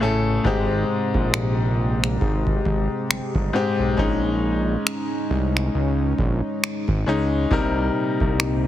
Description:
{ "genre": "contemporary R&B", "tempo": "68 BPM", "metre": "4/4", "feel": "swing 58% on 16ths", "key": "unclear", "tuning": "A4 = 440 Hz", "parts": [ { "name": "bright grand piano", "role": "accompaniment", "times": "0.0-8.7 s", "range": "Ab2 to Bb4", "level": "-24 LUFS", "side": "left 3 dB", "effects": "none" }, { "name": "chorused pulse-width pad", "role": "sustained chords", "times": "0.0-8.7 s", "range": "Bb2 to G#5", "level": "-28 LUFS", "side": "equal", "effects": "sidechain pumping" }, { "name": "fat analog bass", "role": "bass", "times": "0.0-8.7 s", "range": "G1 to Db2", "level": "-23 LUFS", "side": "equal", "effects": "none" }, { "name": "booming analog drum machine", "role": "drums", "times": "0.4-8.6 s", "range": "finger snaps, kick drum", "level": "-23 LUFS", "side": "right 1 dB", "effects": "none" } ], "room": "digital ambience", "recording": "heavily compressed radio sound, multiband compression", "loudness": "-19 LUFS", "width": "side -12 dB against mid", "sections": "0.0-8.7 A section", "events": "none", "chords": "0.5 Abmaj7; 4.0 Eb7sus4/Bb; 7.5 Cm7", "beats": "| 0.45 1.33 2.21 3.10 | 3.98 4.86 5.74 6.63 | 7.51 8.39" }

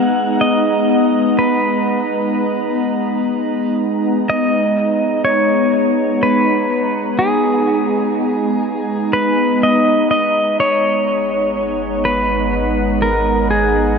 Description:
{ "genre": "ambient", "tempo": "62 BPM", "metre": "3/4", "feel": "straight", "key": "G# minor", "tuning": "A4 = 440 Hz", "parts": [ { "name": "pedal steel guitar", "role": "melody", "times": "0.0-14.0 s", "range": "G#4 to F#5", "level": "-17 LUFS", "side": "equal", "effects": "diffuse ambient delay" }, { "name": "warbly tape-like pad", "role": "sustained chords", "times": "0.0-14.0 s", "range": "G#3 to A#5", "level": "-16 LUFS", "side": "equal", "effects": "chorus, built-in reverb" }, { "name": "deep rumbling drone", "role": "bass", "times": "11.6-14.0 s", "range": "G#1", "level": "-24 LUFS", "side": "equal", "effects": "built-in reverb" } ], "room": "wet huge ambient reverb, RT60 7.8 s", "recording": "none", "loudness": "-14 LUFS", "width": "side -5 dB against mid", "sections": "0.0-10.1 A section; 10.1-14.0 B section", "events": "none", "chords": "0.0 G#m7", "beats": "0.43 | 1.40 2.36 3.33 | 4.30 5.27 6.24 | 7.20 8.17 9.14 | 10.11 11.07 12.04 | 13.01 13.98" }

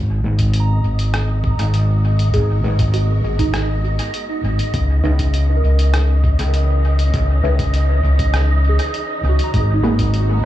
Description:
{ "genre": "ambient dub", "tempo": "100 BPM", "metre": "4/4", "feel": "straight", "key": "G# minor", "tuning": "A4 = 441 Hz", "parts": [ { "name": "warm studio string section", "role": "sustained chords", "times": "0.0-10.4 s", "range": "E3 to A#4", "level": "-34 LUFS", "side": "left 1 dB", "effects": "none" }, { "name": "overdriven fingered electric bass", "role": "bass", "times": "0.0-10.4 s", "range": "G#1 to C#2", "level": "-15 LUFS", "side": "equal", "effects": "none" }, { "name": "wind-like tuned noise texture", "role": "texture", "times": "0.4-10.4 s", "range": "D#5", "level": "-27 LUFS", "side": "right 2 dB", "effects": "built-in reverb" }, { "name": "filtered dub chord stab", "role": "stabs", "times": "0.2-10.0 s", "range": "A#3 to E5", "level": "-25 LUFS", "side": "left 1 dB", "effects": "phaser, lush chorus, dub echo" }, { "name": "electronic kick drum", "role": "drums", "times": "0.4-10.1 s", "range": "none", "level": "-21 LUFS", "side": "equal", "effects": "small room ambience" }, { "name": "lo-fi sampler-style drum kit", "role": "drums", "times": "0.4-10.3 s", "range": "hi-hat, rim click", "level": "-29 LUFS", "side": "left 1 dB", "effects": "small room ambience, dub echo" }, { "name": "soft synth bell", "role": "arpeggios", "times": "0.6-10.4 s", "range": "D#4 to A#5", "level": "-27 LUFS", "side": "right 3 dB", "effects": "chorus, phaser, analog delay" } ], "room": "little or no reverb", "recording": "echo-heavy mix, small room reverb", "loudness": "-14 LUFS", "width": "side -13 dB against mid", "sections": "0.0-10.4 A section", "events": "fade-in on string section 0.0-10.4", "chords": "0.0 G#m9; 4.7 C#m9; 9.5 G#m9", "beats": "0.54 1.14 1.74 | 2.34 2.94 3.54 4.14 | 4.74 5.34 5.94 6.54 | 7.14 7.74 8.34 8.94 | 9.54 10.14" }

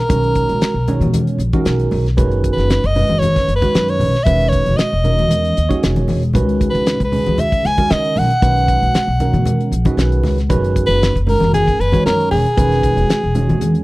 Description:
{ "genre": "electric jazz fusion", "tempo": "116 BPM", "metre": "4/4", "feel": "straight", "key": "unclear", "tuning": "A4 = 440 Hz", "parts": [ { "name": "warm soprano saxophone", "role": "melody", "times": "0.0-13.8 s", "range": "G#4 to G#5", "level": "-18 LUFS", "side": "equal", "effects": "none" }, { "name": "bright tine electric piano", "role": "accompaniment", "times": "0.1-13.8 s", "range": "D#3 to C#5", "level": "-21 LUFS", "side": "right 4 dB", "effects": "phaser" }, { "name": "upright bass", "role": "bass", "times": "0.1-13.8 s", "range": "E1 to C#3", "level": "-17 LUFS", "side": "equal", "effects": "none" }, { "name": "damped 70s drum kit", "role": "drums", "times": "0.1-13.8 s", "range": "hi-hat, kick drum, snare drum", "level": "-19 LUFS", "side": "equal", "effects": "none" }, { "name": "congas", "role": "percussion", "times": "0.1-13.7 s", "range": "none", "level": "-21 LUFS", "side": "left 2 dB", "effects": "none" } ], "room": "studio reverb", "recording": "dry, close 1970s-style studio recording", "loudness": "-13 LUFS", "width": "side -20 dB against mid", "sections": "0.0-13.8 A section", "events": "none", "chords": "0.1 Bmaj9; 2.2 F#sus24; 4.3 Emaj9#11; 6.3 C#sus2; 8.4 Bmaj9; 10.5 F#sus4; 12.6 Emaj9", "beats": "| 0.10 0.62 1.14 1.66 | 2.18 2.71 3.23 3.75 | 4.26 4.79 5.30 5.83 | 6.34 6.87 7.38 7.90 | 8.42 8.94 9.46 9.98 | 10.50 11.02 11.54 12.05 | 12.57 13.09 13.61" }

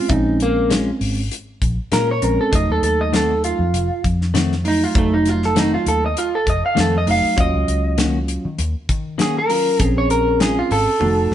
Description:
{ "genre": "straight-eighth soul blues", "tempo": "99 BPM", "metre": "4/4", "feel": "swing 55% on 16ths", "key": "unclear", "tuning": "A4 = 440 Hz", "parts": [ { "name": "electric guitar through a small old amp", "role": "melody", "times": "0.0-11.3 s", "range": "A3 to F5", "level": "-19 LUFS", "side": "right 1 dB", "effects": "none" }, { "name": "bell-like tine electric piano", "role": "accompaniment", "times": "0.0-11.3 s", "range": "Gb3 to Ab4", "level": "-22 LUFS", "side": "right 2 dB", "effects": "none" }, { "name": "vintage muted fingered electric bass", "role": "bass", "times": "0.1-11.3 s", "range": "F1 to Eb3", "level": "-22 LUFS", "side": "equal", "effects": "none" }, { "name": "damped 70s drum kit", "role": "drums", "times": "0.1-11.3 s", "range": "hi-hat, kick drum, snare drum, toms", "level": "-22 LUFS", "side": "left 1 dB", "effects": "none" }, { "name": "clean electric guitar", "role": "stabs", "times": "0.7-10.6 s", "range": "Eb3 to Gb4", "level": "-24 LUFS", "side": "left 4 dB", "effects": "none" } ], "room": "moderate stone room reverb, RT60 1.4 s", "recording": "band playing live in one room, nothing above 10.8 kHz", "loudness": "-16 LUFS", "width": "side -11 dB against mid", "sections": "0.0-11.3 A section", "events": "clean electric guitar solo 0.0-11.3; drum fill 11.0-11.3", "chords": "0.0 Bbm7; 2.5 F7b9; 7.4 Ebm7; 9.8 Bbm7", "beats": "| 0.10 0.70 1.31 1.92 | 2.53 3.13 3.74 4.35 | 4.95 5.56 6.17 6.77 | 7.38 7.99 8.59 9.20 | 9.80 10.41 11.02" }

